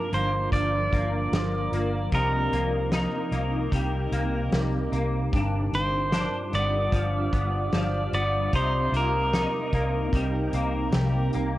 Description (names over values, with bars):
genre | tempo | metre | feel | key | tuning
dream pop | 75 BPM | 4/4 | straight | C minor | A4 = 440 Hz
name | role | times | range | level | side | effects
pedal steel guitar | melody | 0.0-11.3 s | Bb4 to D5 | -29 LUFS | right 1 dB | digital delay
shimmering ambient pad | sustained chords | 0.0-11.6 s | C3 to D5 | -31 LUFS | right 1 dB | chorus, built-in reverb, phaser
clean electric guitar | arpeggios | 0.0-11.6 s | G2 to G4 | -30 LUFS | left 2 dB | ensemble chorus, digital delay
vintage muted fingered electric bass | bass | 0.1-11.6 s | G1 to C2 | -28 LUFS | equal | tube saturation
loose indie drum kit | drums | 0.1-11.5 s | hi-hat, kick drum, snare drum | -28 LUFS | equal | none
room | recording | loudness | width
light reverb, small room ambience | worn, warbling old tape, cassette tape, warbly pitch drift | -23 LUFS | side -15 dB against mid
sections
0.0-11.6 A section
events
none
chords
0.0 Gm7; 2.1 Cm7; 5.3 G7; 8.5 Cm7